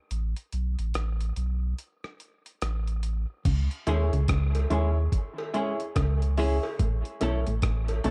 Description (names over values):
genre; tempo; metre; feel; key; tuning
dub reggae; 72 BPM; 4/4; swing 62% on 16ths; C# minor; A4 = 440 Hz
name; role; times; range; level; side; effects
warm sub bass; bass; 0.1-8.1 s; A1 to D#2; -29 LUFS; equal; none
dusty soul sampler-style drum kit; drums; 0.1-8.1 s; crash cymbal, hi-hat, kick drum, rim click; -33 LUFS; equal; none
mellow electric guitar; riff; 3.5-8.1 s; A2 to D#3; -35 LUFS; equal; none
clean electric guitar; accompaniment; 3.9-8.1 s; G#3 to A4; -36 LUFS; equal; phaser, dub echo
warm upright piano; stabs; 3.9-8.1 s; E4 to C#5; -36 LUFS; equal; dub echo
cowbell; percussion; 3.9-8.0 s; none; -41 LUFS; equal; dub echo
room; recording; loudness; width
light reverb; dark, warm production; -28 LUFS; mono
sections
0.0-3.4 A section; 3.4-8.1 B section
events
break 0.0-3.4; kick muted 0.1-3.4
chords
0.1 Asus2; 3.4 C#m; 6.8 A